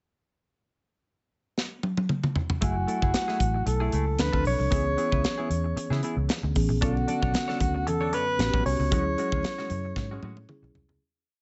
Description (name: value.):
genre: polished 1980s jazz-funk pop.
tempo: 114 BPM.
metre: 4/4.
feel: swing 54% on 16ths.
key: F# minor.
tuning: A4 = 440 Hz.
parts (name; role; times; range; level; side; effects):
modern studio drum kit; drums; 1.6-11.0 s; hi-hat, kick drum, snare drum, toms; -31 LUFS; equal; none.
mellow alto saxophone; melody; 2.6-10.4 s; F#4 to C#5; -32 LUFS; equal; none.
mellow tine electric piano; accompaniment; 2.6-11.0 s; D3 to G#5; -34 LUFS; equal; lush chorus.
semi-hollow electric guitar; riff; 2.6-10.9 s; G3 to D5; -39 LUFS; equal; lush chorus.
vintage muted fingered electric bass; bass; 2.6-11.0 s; F#1 to C#3; -31 LUFS; equal; none.
congas; percussion; 6.8-11.0 s; none; -44 LUFS; equal; none.
room: light reverb, studio ambience.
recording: nothing above 7.9 kHz.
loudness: -27 LUFS.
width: mono.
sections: 0.5-2.6 pickup bar; 2.6-11.0 verse.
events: drum fill 1.6-2.6, 10.0-11.0; fade-out 8.9-11.0.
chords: 0.5 N.C.; 2.6 F#m9; 4.2 Dm7; 4.7 C#m7; 6.8 Bm9; 8.4 A13; 8.9 Dmaj9#11.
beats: | 0.53 1.05 1.57 2.10 | 2.62 3.14 3.67 4.19 | 4.72 5.24 5.77 6.29 | 6.82 7.34 7.87 8.39 | 8.92 9.44 9.96 10.49.